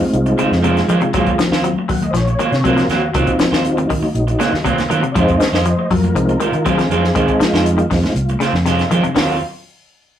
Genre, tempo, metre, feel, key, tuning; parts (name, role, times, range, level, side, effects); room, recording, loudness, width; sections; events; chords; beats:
afrobeat; 120 BPM; 4/4; straight; Eb dorian; A4 = 440 Hz
tonewheel organ; accompaniment; 0.0-9.4 s; Gb3 to Gb5; -19 LUFS; equal; slow rotary speaker, chorus vibrato
semi-hollow electric guitar; arpeggios; 0.0-9.3 s; C3 to Gb3; -21 LUFS; left 4 dB
electric guitar through a small old amp; stabs; 0.0-9.4 s; Eb3 to F4; -20 LUFS; right 4 dB
congas; percussion; 0.0-9.3 s; -28 LUFS; right 2 dB
fingered electric bass; bass; 0.1-9.4 s; Bb1 to F3; -19 LUFS; equal
compact cocktail drum kit; drums; 0.1-9.3 s; hi-hat, kick drum, snare drum; -21 LUFS; equal
wet studio ambience, RT60 0.5 s; rough rehearsal-room recording, tube saturation; -13 LUFS; side -10 dB against mid
0.0-9.2 A section; 9.2-10.2 B section
tonewheel organ solo 0.0-9.2; drum fill 8.2-9.2
0.0 Fm7; 1.1 Ebm69; 5.2 Fm7; 9.2 Ebm69
0.14 0.64 | 1.14 1.64 2.15 2.65 | 3.15 3.65 4.15 4.65 | 5.15 5.65 6.15 6.65 | 7.15 7.65 8.15 8.65 | 9.15